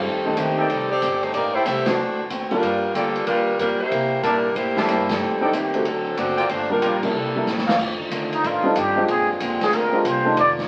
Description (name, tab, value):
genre	jazz, big band swing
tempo	186 BPM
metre	4/4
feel	swing 64% on 8ths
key	F mixolydian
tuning	A4 = 440 Hz
part	warm saxophone section	melody	0.0-7.6 s	Eb3 to E5	-24 LUFS	equal	none
part	warm baby grand piano	accompaniment	0.0-2.6, 4.8-10.4 s	Eb3 to Bb4	-26 LUFS	equal	none
part	upright bass	bass	0.0-10.7 s	F1 to C3	-37 LUFS	equal	none
part	picked steel-string acoustic guitar	accompaniment	0.1-10.6 s	F2 to A4	-34 LUFS	equal	none
part	swinging big-band drum kit	drums	0.4-10.6 s	crash cymbal, hi-hat, kick drum, ride cymbal, snare drum	-30 LUFS	equal	none
part	mellow trumpet section	stabs	0.6-7.8 s	Eb4 to A5	-27 LUFS	equal	none
part	clear trombone section	sustained chords	7.8-10.7 s	D3 to D5	-29 LUFS	equal	none
part	trumpet with plunger mute	melody	8.3-10.5 s	Eb4 to D5	-23 LUFS	equal	none
room	wet studio reverb, RT60 0.8 s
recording	very old 78 rpm record, vinyl crackle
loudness	-21 LUFS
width	mono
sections	0.0-7.8 A section; 7.8-10.7 B section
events	band accent 1.8, 5.0, 7.0; drum fill 7.5-7.8; muted trumpet solo 7.8-10.7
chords	0.0 F13; 1.3 Am7; 2.0 D7; 2.6 Gm7; 3.9 C13; 5.2 F13; 5.9 D7; 6.5 Gm7; 7.1 C13; 7.8 F13; 9.1 Bb13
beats	| 0.04 0.37 0.69 1.01 | 1.34 1.66 1.98 2.31 | 2.63 2.95 3.27 3.59 | 3.92 4.24 4.56 4.88 | 5.21 5.53 5.85 6.17 | 6.50 6.82 7.14 7.47 | 7.79 8.11 8.44 8.76 | 9.08 9.41 9.73 10.05 | 10.38